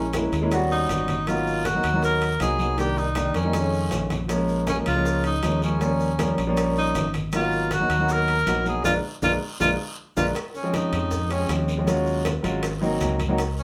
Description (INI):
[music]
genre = Afro-Cuban jazz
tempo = 158 BPM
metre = 4/4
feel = straight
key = unclear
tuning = A4 = 439 Hz
[part]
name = breathy tenor saxophone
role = melody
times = 0.0-13.6 s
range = Db4 to Bb4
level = -28 LUFS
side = equal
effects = none
[part]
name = warm concert grand piano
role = accompaniment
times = 0.0-13.4 s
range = Eb3 to F#4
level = -28 LUFS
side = equal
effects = none
[part]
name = fingered electric bass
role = bass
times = 0.0-13.6 s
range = Ab1 to F2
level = -29 LUFS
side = equal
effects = none
[part]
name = bongos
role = percussion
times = 0.1-13.6 s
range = none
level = -38 LUFS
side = equal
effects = none
[part]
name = congas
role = percussion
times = 0.1-13.6 s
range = none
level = -37 LUFS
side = equal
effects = none
[part]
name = guiro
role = percussion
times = 0.1-13.6 s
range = none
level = -43 LUFS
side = equal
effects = none
[part]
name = maracas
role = percussion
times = 0.1-13.6 s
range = none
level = -45 LUFS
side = equal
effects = none
[part]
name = timbales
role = percussion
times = 0.1-13.6 s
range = none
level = -38 LUFS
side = equal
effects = none
[sound]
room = wet studio reverb, RT60 0.6 s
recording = band playing live in one room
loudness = -24 LUFS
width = mono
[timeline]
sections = 0.0-10.4 A section; 10.4-13.6 B section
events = drum fill 3.2-4.3, 8.8-10.4; band accent 8.8-10.4; tenor saxophone solo 10.4-13.6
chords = 0.0 Bbm7b5; 0.5 Eb7alt; 1.3 Abm9; 2.8 Cm7; 3.5 F7alt; 4.3 Bbm7; 5.8 Eb7; 7.3 Abm7; 8.8 Bb7; 10.4 Eb13sus4; 11.9 Ebm11; 12.6 Ab7